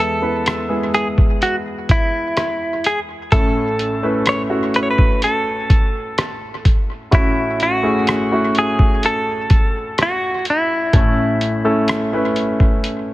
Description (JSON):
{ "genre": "pop ballad", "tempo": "63 BPM", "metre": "4/4", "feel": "straight", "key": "A major", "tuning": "A4 = 440 Hz", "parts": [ { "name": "direct-recorded clean electric guitar", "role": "melody", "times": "0.0-13.1 s", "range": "E4 to C#5", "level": "-20 LUFS", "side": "equal", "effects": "tape echo" }, { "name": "clear baby grand piano", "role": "accompaniment", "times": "0.0-13.1 s", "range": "A1 to B4", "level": "-20 LUFS", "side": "equal", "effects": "none" }, { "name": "lo-fi sampler-style drum kit", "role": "drums", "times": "0.5-13.1 s", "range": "hi-hat, kick drum, rim click", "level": "-16 LUFS", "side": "equal", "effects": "none" } ], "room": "light reverb", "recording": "echo-heavy mix", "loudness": "-15 LUFS", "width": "side -17 dB against mid", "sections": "0.0-13.1 A section", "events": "none", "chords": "0.0 E; 3.3 A; 7.1 F#m7/A; 10.9 A" }